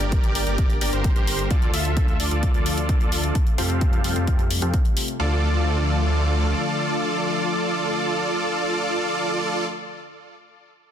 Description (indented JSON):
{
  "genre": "EDM, festival progressive house",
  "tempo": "130 BPM",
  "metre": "4/4",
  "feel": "straight",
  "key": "D minor",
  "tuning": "A4 = 441 Hz",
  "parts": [
    { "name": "lush unison pad", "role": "sustained chords", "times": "0.0-9.7 s", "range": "C3 to G4", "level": "-30 LUFS", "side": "left 2 dB", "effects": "chorus, phaser, sidechain pumping" },
    { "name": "dense compressed supersaw", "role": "riff", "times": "0.0-9.6 s", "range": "C4 to F5", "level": "-25 LUFS", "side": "right 1 dB", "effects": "sidechain pumping, low-pass filter, ping-pong delay" },
    { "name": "detuned saw bass", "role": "bass", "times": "0.0-6.5 s", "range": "G1 to F2", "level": "-24 LUFS", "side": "equal", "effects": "sidechain pumping" },
    { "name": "electronic hi-hat", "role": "drums", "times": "0.0-5.2 s", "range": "none", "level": "-29 LUFS", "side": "left 1 dB", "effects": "studio ambience" },
    { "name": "electronic kick drum", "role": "drums", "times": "0.1-4.8 s", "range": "none", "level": "-21 LUFS", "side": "equal", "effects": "studio ambience" }
  ],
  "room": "light reverb",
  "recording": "dense, heavily limited modern master",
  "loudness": "-20 LUFS",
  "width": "side -9 dB against mid",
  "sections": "0.0-5.2 A section; 5.2-8.9 B section",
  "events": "filter sweep on supersaw synth 0.0-5.2; filter sweep on detuned saw bass 0.0-5.2",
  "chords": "0.0 Gm; 1.5 Dm; 3.4 Fadd9; 5.2 Dm"
}